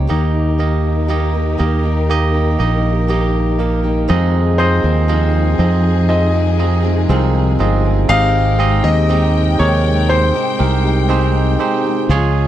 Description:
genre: pop ballad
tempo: 60 BPM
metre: 4/4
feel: straight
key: Ab major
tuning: A4 = 440 Hz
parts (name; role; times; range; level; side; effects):
- bell-like tine electric piano; accompaniment; 0.0-12.5 s; Ab2 to Eb5; -19 LUFS; right 8 dB; none
- warm studio string section; sustained chords; 0.0-12.5 s; C3 to G5; -25 LUFS; left 4 dB; none
- picked steel-string acoustic guitar; arpeggios; 0.0-12.5 s; F2 to Ab4; -23 LUFS; left 4 dB; slapback echo
- fingered electric bass; bass; 0.0-12.5 s; G1 to F2; -15 LUFS; equal; none
- clear concert grand piano; melody; 4.6-11.6 s; C5 to F5; -20 LUFS; left 3 dB; slapback echo
room: little or no reverb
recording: dry, close 1970s-style studio recording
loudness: -13 LUFS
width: side -12 dB against mid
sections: 0.1-4.1 A section; 4.1-12.5 B section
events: none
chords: 0.1 Eb; 4.1 Fm7; 8.1 Abmaj7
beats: | 0.09 1.09 2.09 3.09 | 4.09 5.09 6.09 7.09 | 8.09 9.09 10.09 11.09 | 12.09

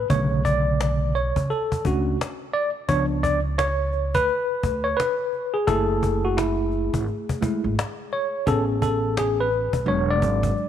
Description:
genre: hip hop, jazz-hop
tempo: 86 BPM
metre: 4/4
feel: swing 63% on 16ths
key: B dorian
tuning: A4 = 440 Hz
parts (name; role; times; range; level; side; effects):
- tine electric piano; accompaniment; 0.0-10.7 s; C#3 to D5; -22 LUFS; equal; medium stereo tremolo
- upright bass; bass; 0.0-10.5 s; E1 to D2; -26 LUFS; right 1 dB; none
- cajon; drums; 0.1-10.7 s; none; -29 LUFS; left 2 dB; none
room: light reverb, small room ambience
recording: 1960s-style stereo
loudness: -21 LUFS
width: side -10 dB against mid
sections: 0.0-10.7 A section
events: tine electric piano solo 0.0-10.7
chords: 0.1 Bm9; 2.9 C#7b9; 5.7 F#m9; 8.5 Amaj7; 9.9 E7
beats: | 0.10 0.80 1.50 2.19 | 2.89 3.59 4.29 4.99 | 5.68 6.38 7.08 7.78 | 8.47 9.17 9.87 10.57

